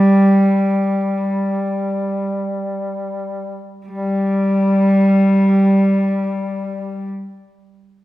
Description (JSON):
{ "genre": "caucasian folk, Caucasian lament", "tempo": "free time", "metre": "none", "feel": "none", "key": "unclear", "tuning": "A4 = 439 Hz", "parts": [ { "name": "warm cello", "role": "melody", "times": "0.0-7.1 s", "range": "G3", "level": "-15 LUFS", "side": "equal", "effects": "none" }, { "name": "warm duduk", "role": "drone", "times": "0.0-7.1 s", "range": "G3", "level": "-23 LUFS", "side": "left 3 dB", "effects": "none" } ], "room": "wet recital hall reverb, RT60 1.6 s", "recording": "recorded in a church or concert hall", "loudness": "-15 LUFS", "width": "side -16 dB against mid", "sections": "0.0-3.9 A section; 3.9-8.0 B section", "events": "slowing down 0.0-3.9", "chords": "none", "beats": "free time" }